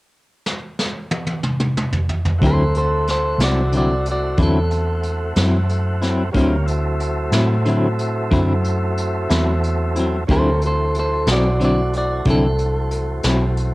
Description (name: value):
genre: slow blues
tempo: 61 BPM (dotted quarters)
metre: 12/8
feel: straight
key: D mixolydian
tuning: A4 = 441 Hz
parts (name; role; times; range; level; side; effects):
- vintage brush drum kit; drums; 0.5-13.7 s; hi-hat, kick drum, snare drum, toms; -22 LUFS; equal; cassette tape
- clean electric guitar; accompaniment; 2.4-13.5 s; D3 to E4; -21 LUFS; left 1 dB; tremolo, cassette tape, plate reverb
- tonewheel organ; sustained chords; 2.4-13.7 s; E3 to F#4; -26 LUFS; right 1 dB; slow rotary speaker, cassette tape, plate reverb
- vintage muted fingered electric bass; bass; 2.4-13.7 s; B1 to A2; -20 LUFS; equal; none
- clean electric guitar; melody; 2.5-13.6 s; F#4 to D5; -22 LUFS; equal; spring reverb, plate reverb
room: light reverb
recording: home recording on cassette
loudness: -16 LUFS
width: side -20 dB against mid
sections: 0.0-2.4 A section; 2.4-13.7 B section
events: drum fill 0.5-2.4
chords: 0.0 N.C.; 2.4 D9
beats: 0.45 1.44 | 2.42 3.40 4.39 5.37 | 6.35 7.34 8.32 9.30 | 10.29 11.27 12.26 13.24